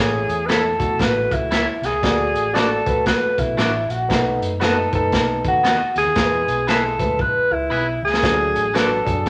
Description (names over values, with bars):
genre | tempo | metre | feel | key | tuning
uptempo 1960s-style soul | 116 BPM | 4/4 | swing 61% on 8ths | A major | A4 = 440 Hz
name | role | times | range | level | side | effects
warm alto saxophone | melody | 0.0-9.3 s | E4 to B4 | -23 LUFS | equal | none
warm concert grand piano | accompaniment | 0.0-9.3 s | F#3 to D5 | -27 LUFS | equal | none
picked electric bass | bass | 0.0-9.3 s | E1 to E2 | -31 LUFS | equal | none
crunchy breakbeat drum kit | drums | 0.3-9.3 s | hi-hat, kick drum, snare drum | -24 LUFS | equal | none
electric guitar at the edge of break-up | stabs | 0.5-8.9 s | B3 to E5 | -27 LUFS | equal | none
room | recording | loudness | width
wet large studio reverb, RT60 0.9 s | none | -19 LUFS | mono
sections
0.0-9.3 A section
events
drum fill 7.2-8.2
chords
0.0 A; 2.0 D; 4.1 B7; 6.2 E; 8.2 D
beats
0.48 1.00 1.51 | 2.03 2.55 3.06 3.58 | 4.10 4.61 5.13 5.65 | 6.16 6.68 7.20 7.71 | 8.23 8.75 9.26